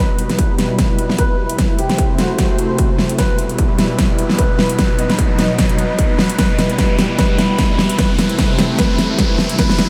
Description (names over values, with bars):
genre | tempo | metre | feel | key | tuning
heavy wobble dubstep | 150 BPM | 4/4 | swing 55% on 16ths, half-time | E harmonic minor | A4 = 438 Hz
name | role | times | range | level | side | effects
warm concert grand piano | melody | 0.0-9.9 s | F#4 to D#5 | -26 LUFS | equal | lush chorus, low-pass filter, diffuse ambient delay
supersaw pad | sustained chords | 0.0-9.9 s | B2 to C5 | -23 LUFS | equal | sidechain pumping, low-pass filter
riser | sound effects | 2.9-9.9 s | none | -29 LUFS | equal | none
dubstep drum kit | drums | 0.2-9.9 s | hi-hat, snare drum | -20 LUFS | equal | studio reverb
electronic kick drum | drums | 0.4-9.7 s | none | -20 LUFS | equal | distortion, studio reverb
room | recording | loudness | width
wet huge ambient reverb, RT60 7.6 s | dreamy mix soaked in reverb | -16 LUFS | mono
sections
0.0-9.9 A section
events
build-up 0.0-9.9; drum fill 0.0-9.9; riser 2.9-9.9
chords
0.0 Em; 1.6 Am; 3.2 Em; 4.8 B; 6.4 Em; 8.0 Am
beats
0.39 0.79 1.19 | 1.58 1.99 2.38 2.79 | 3.19 3.58 3.98 4.38 | 4.79 5.18 5.58 5.99 | 6.38 6.79 7.18 7.58 | 7.99 8.38 8.79 9.19 | 9.59